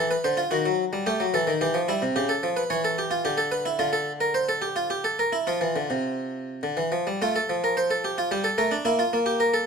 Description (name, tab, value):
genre	classical, baroque-style two-part invention for harpsichord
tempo	109 BPM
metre	3/4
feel	straight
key	F major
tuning	A4 = 440 Hz
part	harpsichord	solo	0.0-9.7 s	C3 to C#5	-23 LUFS	equal	none
room	light reverb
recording	close, detailed microphones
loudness	-23 LUFS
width	side -6 dB against mid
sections	0.0-7.2 A section; 7.2-9.7 B section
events	none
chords	0.0 E5; 0.5 Ebdim; 1.6 Em; 2.2 A7/C#; 3.3 D5; 3.8 Dm; 4.4 G5/D; 4.9 Gm69/D; 5.5 F5; 7.2 F; 8.3 Gm; 8.9 Edim/Bb